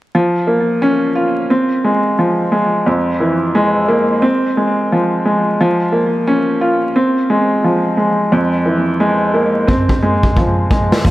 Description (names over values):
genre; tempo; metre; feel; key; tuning
hip hop, boom-bap hip-hop; 88 BPM; 4/4; swing 61% on 16ths; F harmonic minor; A4 = 440 Hz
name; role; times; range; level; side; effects
dark grand piano; accompaniment; 0.1-11.1 s; F2 to F4; -13 LUFS; equal; cassette tape, high-pass filter, low-pass filter, analog delay
raw garage drum kit; drums; 9.7-11.1 s; hi-hat, kick drum, snare drum; -14 LUFS; equal; none
upright bass; bass; 11.0-11.1 s; F1; -12 LUFS; equal; none
room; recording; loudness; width
moderate spring reverb, RT60 2.7 s; echo-heavy mix, vinyl crackle; -12 LUFS; side -16 dB against mid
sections
0.1-11.1 A section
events
drum fill 9.7-11.0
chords
0.1 Db6/F; 1.5 Fm; 2.9 Fmmaj7; 4.2 Fm; 5.6 Db6/F; 7.0 Fm; 8.3 Fmmaj7; 9.7 Fm